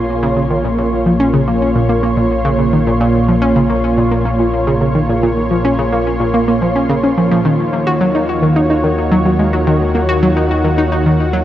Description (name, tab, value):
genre	ambient, sequencer-driven space music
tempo	108 BPM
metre	4/4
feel	straight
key	Bb minor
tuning	A4 = 438 Hz
part	lush unison pad	sustained chords	0.0-11.4 s	Bb2 to C6	-15 LUFS	equal	chorus
part	analog pluck	riff	0.0-11.4 s	Bb2 to Gb4	-15 LUFS	equal	chorus, ping-pong delay
part	warm sub bass	bass	0.0-11.4 s	Bb1 to Eb2	-21 LUFS	equal	none
room	wet huge ambient reverb, RT60 8.2 s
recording	worn, warbling old tape, cassette tape, warbly pitch drift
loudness	-12 LUFS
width	side -12 dB against mid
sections	0.0-11.4 A section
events	fade-out 10.4-11.4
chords	0.0 Bbm; 7.4 Ebm7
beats	0.23 | 0.78 1.34 1.89 2.45 | 3.00 3.56 4.12 4.67 | 5.23 5.78 6.34 6.89 | 7.45 8.01 8.56 9.12 | 9.67 10.23 10.78 11.34